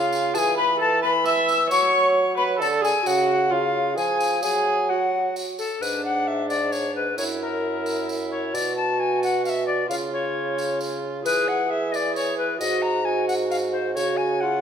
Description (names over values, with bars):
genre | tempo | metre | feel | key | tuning
classical, renaissance-style consort dance | 132 BPM | 3/4 | straight | F# minor | A4 = 440 Hz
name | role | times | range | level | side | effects
alto recorder | melody | 0.0-14.6 s | A4 to E6 | -23 LUFS | left 4 dB | none
warm viola | second line | 0.0-14.6 s | D4 to E5 | -26 LUFS | right 4 dB | none
warm bassoon | bass | 0.0-14.6 s | F#2 to F#3 | -27 LUFS | right 2 dB | none
tambourine | percussion | 0.1-14.2 s | none | -35 LUFS | right 2 dB | none
room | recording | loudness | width
moderate recital hall reverb, RT60 1.8 s | minimal, uncompressed stereo recording | -20 LUFS | side -8 dB against mid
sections
0.0-5.8 A section; 5.8-14.6 B section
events
none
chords
0.3 Eadd11; 1.7 F#5; 3.1 C#sus4; 3.5 C#; 4.4 F#sus2; 5.8 G#dim; 7.2 F#7; 8.5 B5; 9.9 C#; 11.2 E; 12.6 G#7(no3); 14.0 C#sus4